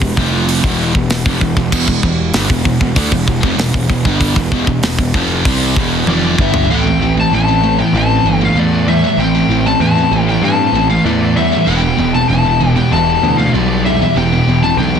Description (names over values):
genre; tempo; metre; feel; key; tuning
heavy metal; 96 BPM; 4/4; straight; E phrygian; A4 = 440 Hz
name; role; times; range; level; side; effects
hollow soft pad; sustained chords; 0.0-15.0 s; E3 to C5; -29 LUFS; equal; none
sludgy distorted guitar; riff; 0.0-15.0 s; E2 to C4; -20 LUFS; left 9 dB; overdrive
sludgy distorted guitar; riff; 0.0-15.0 s; E2 to C4; -18 LUFS; right 9 dB; overdrive
thick fuzz guitar; riff; 0.0-15.0 s; E2 to C4; -20 LUFS; equal; distortion
fuzz picked electric bass; bass; 0.0-15.0 s; E1 to G2; -18 LUFS; equal; overdrive
tight metal drum kit; drums; 0.0-6.7 s; crash cymbal, hi-hat, kick drum, snare drum, toms; -16 LUFS; equal; soft clipping on kick
lead guitar through a small cranked amp; melody; 6.1-15.0 s; D5 to A5; -17 LUFS; left 5 dB; overdrive, tape echo
bluesy overdriven lead guitar; second line; 6.1-15.0 s; G3 to E4; -22 LUFS; right 4 dB; distortion
room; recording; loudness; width
light reverb; dense, heavily limited modern master; -11 LUFS; side -7 dB against mid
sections
0.0-6.7 A section; 6.7-15.0 B section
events
drum fill 6.1-6.7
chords
0.0 Em; 6.7 Am; 11.7 Em